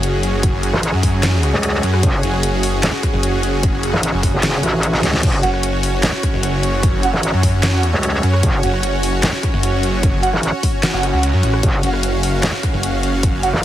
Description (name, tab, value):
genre	heavy wobble dubstep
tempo	150 BPM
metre	4/4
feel	half-time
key	F# harmonic minor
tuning	A4 = 440 Hz
part	supersaw pad	sustained chords	0.0-13.6 s	C#4 to E#5	-21 LUFS	equal	sidechain pumping
part	snarling distorted saw bass	bass	0.0-13.5 s	F#1 to F#2	-19 LUFS	equal	distortion, overdrive
part	dubstep drum kit	drums	0.0-13.6 s	crash cymbal, handclaps, hi-hat, rim click, snare drum	-22 LUFS	left 1 dB	none
part	electronic kick drum	drums	0.4-13.3 s	none	-19 LUFS	equal	none
part	metallic wobble bass	bass	0.7-13.6 s	F#1 to C#2	-18 LUFS	equal	chorus, overdrive
part	mellow brass ensemble	stabs	5.4-13.5 s	C#4 to F#5	-24 LUFS	right 4 dB	ping-pong delay
room	light reverb, digital ambience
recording	heavily compressed radio sound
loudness	-14 LUFS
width	side -12 dB against mid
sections	0.0-13.6 A section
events	drum fill 4.9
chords	0.0 F#5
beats	0.03 | 0.43 0.83 1.23 1.63 | 2.03 2.43 2.83 3.23 | 3.63 4.03 4.43 4.83 | 5.23 5.63 6.03 6.43 | 6.83 7.23 7.63 8.03 | 8.43 8.83 9.23 9.63 | 10.03 10.43 10.83 11.23 | 11.63 12.03 12.43 12.83 | 13.23 13.63